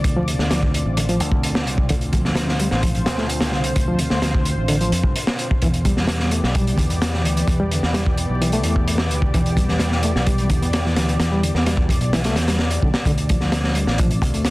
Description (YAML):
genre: breakbeat, breaks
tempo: 129 BPM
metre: 4/4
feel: straight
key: D dorian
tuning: A4 = 440 Hz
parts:
  - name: lush unison pad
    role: sustained chords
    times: 0.0-14.5 s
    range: D3 to D5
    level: -28 LUFS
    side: equal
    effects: chorus, vintage 12-bit sampler grit, sidechain pumping
  - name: barky reed electric piano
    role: riff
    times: 0.0-14.4 s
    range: C3 to B3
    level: -25 LUFS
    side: equal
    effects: overdrive, fast tremolo
  - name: fingered electric bass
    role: bass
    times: 0.0-14.5 s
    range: A1 to G2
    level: -22 LUFS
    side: equal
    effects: none
  - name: crunchy breakbeat drum kit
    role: drums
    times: 0.0-14.5 s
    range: hi-hat, kick drum, snare drum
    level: -20 LUFS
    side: equal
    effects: none
room: light reverb, studio ambience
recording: dense, heavily limited modern master, vinyl crackle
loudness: -17 LUFS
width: side -20 dB against mid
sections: 0.0-14.5 A section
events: none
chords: 0.0 Dm7; 5.6 Em7; 13.1 Dm7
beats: | 0.04 0.50 0.97 1.43 | 1.90 2.36 2.83 3.29 | 3.76 4.22 4.69 5.15 | 5.62 6.08 6.55 7.01 | 7.48 7.94 8.41 8.87 | 9.34 9.80 10.27 10.73 | 11.20 11.66 12.13 12.60 | 13.06 13.53 13.99 14.46